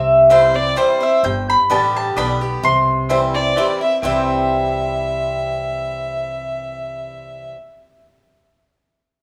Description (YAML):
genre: bluegrass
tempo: 129 BPM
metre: 3/4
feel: straight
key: C major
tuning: A4 = 442 Hz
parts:
  - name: mandolin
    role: melody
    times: 0.0-3.5 s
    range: E5 to C6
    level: -17 LUFS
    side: equal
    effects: none
  - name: picked swing-style acoustic guitar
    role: accompaniment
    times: 0.0-7.6 s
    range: G2 to G4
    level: -25 LUFS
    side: equal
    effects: none
  - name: upright bass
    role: bass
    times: 0.0-7.5 s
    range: G1 to C2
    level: -29 LUFS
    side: equal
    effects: none
  - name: rich fiddle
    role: second line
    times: 0.3-7.5 s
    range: C5 to E5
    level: -23 LUFS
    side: equal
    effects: none
  - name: mandolin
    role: stabs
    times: 0.3-7.6 s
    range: B3 to A5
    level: -28 LUFS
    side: equal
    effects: none
room: light reverb, small room ambience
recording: rough home demo mix, studio reverb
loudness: -17 LUFS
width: mono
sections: 0.0-1.2 A section; 1.2-4.0 B section; 4.0-6.8 C section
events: none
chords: 0.0 C; 1.2 Gadd9; 2.6 C